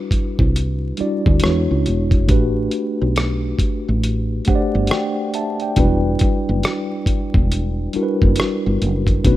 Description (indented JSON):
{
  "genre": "R&B, neo-soul",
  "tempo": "69 BPM",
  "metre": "4/4",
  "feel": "swing 62% on 16ths",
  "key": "E minor",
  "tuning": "A4 = 440 Hz",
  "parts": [
    { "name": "mellow tine electric piano", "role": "accompaniment", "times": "0.0-9.4 s", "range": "G3 to A5", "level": "-21 LUFS", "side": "equal", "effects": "medium stereo tremolo" },
    { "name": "woody fretless electric bass", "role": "bass", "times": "0.1-9.4 s", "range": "E1 to E2", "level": "-19 LUFS", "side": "equal", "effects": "analog chorus" },
    { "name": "dusty soul sampler-style drum kit", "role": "drums", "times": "0.1-9.4 s", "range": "hi-hat, kick drum, rim click", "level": "-18 LUFS", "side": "equal", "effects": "none" }
  ],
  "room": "little or no reverb",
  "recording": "rough home demo mix, vinyl crackle",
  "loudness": "-16 LUFS",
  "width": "side -15 dB against mid",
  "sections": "0.0-9.4 A section",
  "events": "none",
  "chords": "0.0 Em9; 1.4 E13; 2.3 A13sus4; 5.8 Em9"
}